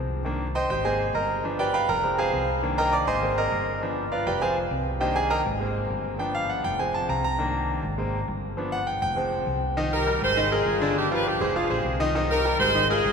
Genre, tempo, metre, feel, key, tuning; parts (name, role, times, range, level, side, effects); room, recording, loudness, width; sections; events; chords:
latin; 202 BPM; 4/4; straight; C minor; A4 = 436 Hz
bright concert grand piano; accompaniment; 0.0-13.1 s; D3 to D6; -24 LUFS; equal
hollow-body short-scale fingered electric bass; bass; 0.0-13.1 s; F1 to C2; -31 LUFS; equal
warm horn section; melody; 9.9-13.1 s; D4 to C5; -23 LUFS; equal
wet cathedral reverb, RT60 5.0 s; recorded in a church or concert hall; -22 LUFS; side -6 dB against mid
0.0-9.8 A section; 9.8-13.1 B section
grand piano solo 0.0-9.8
0.3 Cm7; 0.8 Abadd9; 1.4 G7; 2.0 Fm; 2.6 Cm7; 3.2 Abadd9; 3.8 G7; 4.4 Fm; 5.0 Cm7; 5.6 Abadd9; 6.2 G7; 6.8 Fm; 7.4 Cm7; 8.0 Abadd9; 8.6 G7; 9.2 Fm; 9.8 Cm7; 10.4 Absus2; 11.0 G5; 11.6 Fm; 12.2 Cm7